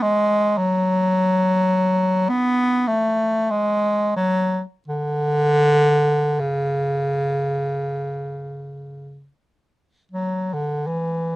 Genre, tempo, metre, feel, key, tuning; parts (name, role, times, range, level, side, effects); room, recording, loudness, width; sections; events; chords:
classical, free, expressive piece for unaccompanied bass clarinet; 32-54 BPM; 4/4; rubato; A4 = 443 Hz
clear bass clarinet; solo; 0.0-11.4 s; C#3 to B3; -18 LUFS; equal
little or no reverb; close, detailed microphones; -18 LUFS; side -17 dB against mid
0.0-10.9 A section